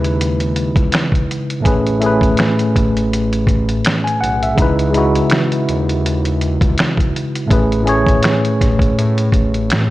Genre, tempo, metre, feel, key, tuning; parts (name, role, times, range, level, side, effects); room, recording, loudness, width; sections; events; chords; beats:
lo-fi hip hop; 82 BPM; 4/4; swing 55% on 16ths; C# minor; A4 = 439 Hz
tine electric piano; accompaniment; 0.0-9.9 s; A2 to G#5; -16 LUFS; equal; medium stereo tremolo, cassette tape, low-pass filter
smooth synth bass; bass; 0.0-9.9 s; A1 to A2; -21 LUFS; equal
trip hop sampler-style drum kit; drums; 0.0-9.9 s; finger snaps, hi-hat, kick drum, snare drum; -17 LUFS; equal
light reverb; dry, gritty hardware recording; -13 LUFS; side -16 dB against mid
0.0-9.9 A section
0.0 C#m9; 1.7 Amaj7; 4.6 C#m9; 7.5 Amaj7
0.19 0.92 | 1.65 2.38 3.12 3.85 | 4.58 5.31 6.04 6.77 | 7.51 8.24 8.97 9.70